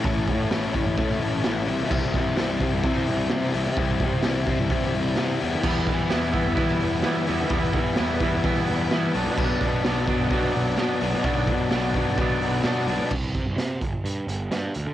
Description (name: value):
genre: indie rock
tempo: 128 BPM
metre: 4/4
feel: straight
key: unclear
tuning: A4 = 439 Hz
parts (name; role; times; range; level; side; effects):
- soft string machine; sustained chords; 0.0-13.1 s; D4 to C6; -36 LUFS; right 2 dB; none
- biting overdriven guitar; riff; 0.0-13.1 s; A2 to E4; -25 LUFS; left 5 dB; none
- fuzz picked electric bass; bass; 0.0-14.9 s; G1 to E3; -27 LUFS; right 2 dB; overdrive
- raw garage drum kit; drums; 0.0-14.9 s; crash cymbal, hi-hat, kick drum, snare drum; -27 LUFS; right 2 dB; cassette tape
- twangy electric guitar; riff; 5.6-13.1 s; F#3 to E4; -30 LUFS; right 9 dB; analog chorus
room: light reverb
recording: home recording on cassette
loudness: -21 LUFS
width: side -12 dB against mid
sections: 0.0-13.1 A section; 13.1-14.9 B section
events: none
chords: 0.0 A; 1.7 C; 5.4 Em; 9.1 Bm; 13.1 N.C.